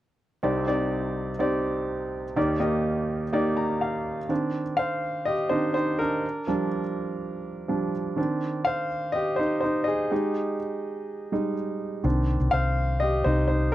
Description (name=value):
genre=pop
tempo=124 BPM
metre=4/4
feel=straight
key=C minor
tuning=A4 = 435 Hz
part: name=clear grand piano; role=accompaniment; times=0.4-13.7 s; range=C2 to Bb5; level=-24 LUFS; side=equal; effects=none
part: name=hollow-body short-scale fingered electric bass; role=bass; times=12.0-13.7 s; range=C2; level=-24 LUFS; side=left 1 dB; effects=none
room=light reverb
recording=dry, close 1970s-style studio recording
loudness=-24 LUFS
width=side -14 dB against mid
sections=0.4-4.3 A section; 4.3-13.7 B section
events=grand piano fill 3.3-4.3; grand piano solo 4.3-13.7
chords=0.4 Cmadd9; 2.4 Ebmaj7; 4.3 Cmadd9; 6.2 Bb6/F; 8.2 Cmadd9; 10.1 Ebadd11; 12.0 Cmadd9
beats=| 0.43 0.91 1.40 1.88 | 2.37 2.85 3.33 3.82 | 4.30 4.79 5.27 5.76 | 6.24 6.72 7.21 7.69 | 8.18 8.66 9.14 9.63 | 10.11 10.60 11.08 11.56 | 12.05 12.53 13.02 13.50